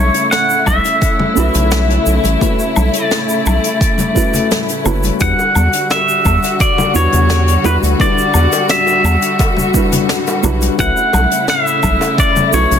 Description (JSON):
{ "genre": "sunset chillout", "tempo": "86 BPM", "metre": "4/4", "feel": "straight", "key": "E dorian", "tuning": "A4 = 440 Hz", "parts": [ { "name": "pedal steel guitar", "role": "melody", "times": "0.0-12.8 s", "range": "B4 to F#5", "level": "-16 LUFS", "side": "left 1 dB", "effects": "digital delay" }, { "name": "muted studio string section", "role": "sustained chords", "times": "0.0-12.8 s", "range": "C#3 to F#4", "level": "-19 LUFS", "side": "left 2 dB", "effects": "none" }, { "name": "round analog bass", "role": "bass", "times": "0.0-12.8 s", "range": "F#1 to E2", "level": "-14 LUFS", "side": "right 1 dB", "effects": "none" }, { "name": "jazz brush drum kit", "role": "drums", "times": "0.1-12.8 s", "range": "hi-hat, shaker, snare drum, woodblock", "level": "-21 LUFS", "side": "left 1 dB", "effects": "soft clipping on snare" }, { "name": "electronic kick drum", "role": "drums", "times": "0.7-12.3 s", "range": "none", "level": "-17 LUFS", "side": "right 1 dB", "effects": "overdrive" }, { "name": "congas and bongos", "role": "percussion", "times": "0.7-12.8 s", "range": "none", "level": "-23 LUFS", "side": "left 3 dB", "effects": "none" }, { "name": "dark baby grand piano", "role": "accompaniment", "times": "1.3-12.8 s", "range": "G3 to B4", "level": "-20 LUFS", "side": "moving between left 5 dB and right 4 dB", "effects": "auto-pan, digital delay" } ], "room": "light reverb, small room ambience", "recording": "dense, heavily limited modern master", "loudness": "-11 LUFS", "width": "side -8 dB against mid", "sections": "0.0-5.2 A section; 5.2-12.8 B section", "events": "filter sweep on grand piano 0.0-5.2", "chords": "0.0 B9sus4; 5.2 Em9; 10.8 B9sus4" }